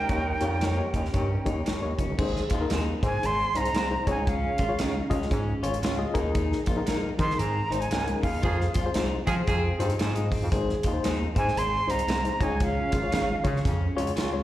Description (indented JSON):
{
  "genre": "uptempo 1960s-style soul",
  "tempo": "115 BPM",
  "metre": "4/4",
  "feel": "swing 61% on 8ths",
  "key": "Ab major",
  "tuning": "A4 = 440 Hz",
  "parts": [
    { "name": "jazz flute", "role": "melody", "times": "0.0-13.7 s", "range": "F5 to C6", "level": "-29 LUFS", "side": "right 2 dB", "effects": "slapback echo" },
    { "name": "warm horn section", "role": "second line", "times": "0.0-1.9, 8.4-9.9 s", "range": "F3 to Bb4", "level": "-33 LUFS", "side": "right 2 dB", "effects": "slapback echo" },
    { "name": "electric guitar through a small old amp", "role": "riff", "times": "0.0-14.4 s", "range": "C4 to Ab4", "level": "-35 LUFS", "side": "left 6 dB", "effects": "slapback echo" },
    { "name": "growling FM bass", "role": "bass", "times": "0.0-14.4 s", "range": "F1 to F3", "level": "-28 LUFS", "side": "equal", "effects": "none" },
    { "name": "reed electric piano", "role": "accompaniment", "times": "0.1-14.4 s", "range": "Bb3 to Eb5", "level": "-31 LUFS", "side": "left 3 dB", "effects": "fast tremolo, slapback echo" },
    { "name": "natural country drum kit", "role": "drums", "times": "0.1-14.3 s", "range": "crash cymbal, hi-hat, kick drum, snare drum", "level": "-30 LUFS", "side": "equal", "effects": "none" },
    { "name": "electric guitar through a small old amp", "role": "stabs", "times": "0.6-14.3 s", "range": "Ab3 to Db5", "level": "-34 LUFS", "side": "right 4 dB", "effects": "wide subtle chorus, slapback echo" }
  ],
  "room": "little or no reverb",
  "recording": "live gig heard through the venue's PA, recital hall reverb",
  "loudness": "-24 LUFS",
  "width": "side -14 dB against mid",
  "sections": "0.0-2.2 A section; 2.2-14.4 B section",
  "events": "band accent 8.4-10.5",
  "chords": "0.0 Eb7; 2.2 Ab; 4.0 Db; 6.1 Ebsus4; 8.4 Fm; 10.5 Ab; 12.3 Db",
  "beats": "| 0.10 0.62 1.14 1.66 | 2.19 2.71 3.23 3.75 | 4.27 4.79 5.31 5.83 | 6.35 6.87 7.39 7.92 | 8.44 8.96 9.48 10.00 | 10.52 11.04 11.56 12.09 | 12.61 13.13 13.65 14.17"
}